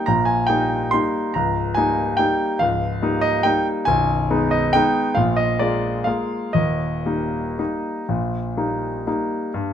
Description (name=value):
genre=classical, piano waltz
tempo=111-148 BPM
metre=3/4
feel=rubato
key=Eb major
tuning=A4 = 440 Hz
part: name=clear concert grand piano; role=solo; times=0.0-9.7 s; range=Cb1 to C6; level=-18 LUFS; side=equal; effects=none
room=light reverb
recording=close, detailed microphones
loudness=-18 LUFS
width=side -9 dB against mid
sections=0.0-9.6 A section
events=none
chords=0.0 Eb; 1.4 Eb7/Db; 3.9 Abm/Cb; 5.2 Bb7; 6.5 Eb